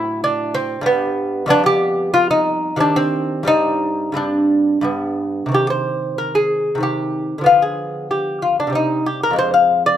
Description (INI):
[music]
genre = classical, baroque-style dance for lute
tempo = 86-96 BPM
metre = 3/4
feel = rubato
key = C minor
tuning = A4 = 440 Hz
[part]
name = lute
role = solo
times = 0.0-10.0 s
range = F2 to F5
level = -15 LUFS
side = equal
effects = none
[sound]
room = light reverb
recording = close, detailed microphones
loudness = -15 LUFS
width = side -10 dB against mid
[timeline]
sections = 0.0-5.5 A section; 5.5-10.0 A section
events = none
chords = 0.0 Am6; 0.9 N.C.; 1.5 G7/F; 2.8 Cm/Eb; 3.5 Gsus4; 4.9 G; 5.5 Cm; 7.5 Ddim7; 8.7 Cm; 9.4 Fm